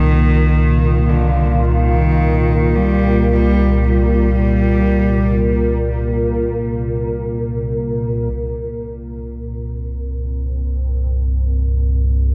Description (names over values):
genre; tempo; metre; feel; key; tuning
dark ambient drone; free time; none; none; C minor; A4 = 441 Hz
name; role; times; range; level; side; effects
warm cello; melody; 0.0-6.1 s; D3 to G3; -21 LUFS; equal; delay
sweeping resonant pad; sustained chords; 0.0-12.3 s; C2 to Bb4; -22 LUFS; equal; chorus
deep rumbling drone; drone; 0.0-12.3 s; C2 to Bb2; -20 LUFS; equal; built-in reverb, lush chorus
room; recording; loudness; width
wet huge ambient reverb, RT60 7.7 s; worn, warbling old tape, cassette tape, warbly pitch drift; -17 LUFS; mono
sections
0.0-8.3 A section; 8.3-12.3 B section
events
fade-in on analog synth pad 8.3-12.3; filter sweep on synth drone 8.3-12.3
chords
0.0 C5